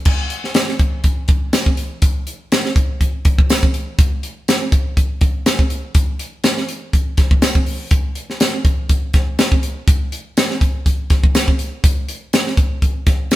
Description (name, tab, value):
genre	pop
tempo	122 BPM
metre	4/4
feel	swing 54% on 16ths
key	none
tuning	none
part	crisp fusion drum kit	drums	0.1-13.4 s	crash cymbal, hi-hat, kick drum, snare drum	-14 LUFS	equal	none
part	tambourine	percussion	0.6-13.4 s	none	-31 LUFS	right 4 dB	none
room	moderate stone room reverb, RT60 1.2 s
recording	band playing live in one room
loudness	-15 LUFS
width	side -15 dB against mid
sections	0.1-13.4 A section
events	none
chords	none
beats	| 0.06 0.55 1.04 1.53 | 2.02 2.51 3.00 3.50 | 3.99 4.48 4.97 5.46 | 5.95 6.44 6.93 7.42 | 7.91 8.40 8.89 9.38 | 9.88 10.37 10.86 11.35 | 11.84 12.33 12.82 13.31